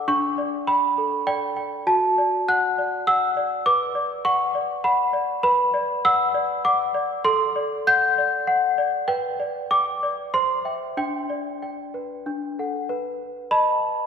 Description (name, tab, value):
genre	classical, lullaby for celesta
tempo	92-102 BPM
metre	3/4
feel	rubato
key	G major from 5.4 s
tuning	A4 = 438 Hz
part	worn celesta	solo	0.0-14.1 s	D4 to G6	-20 LUFS	equal	none
room	wet church reverb, RT60 2.6 s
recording	recorded in a church or concert hall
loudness	-20 LUFS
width	side -7 dB against mid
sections	0.0-12.9 A section; 12.9-14.1 B section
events	none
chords	0.1 A7/D; 1.9 D/F#; 3.7 Bm; 7.2 D7/A; 9.1 G/B; 10.3 C; 11.0 G/D; 12.3 D; 12.9 B7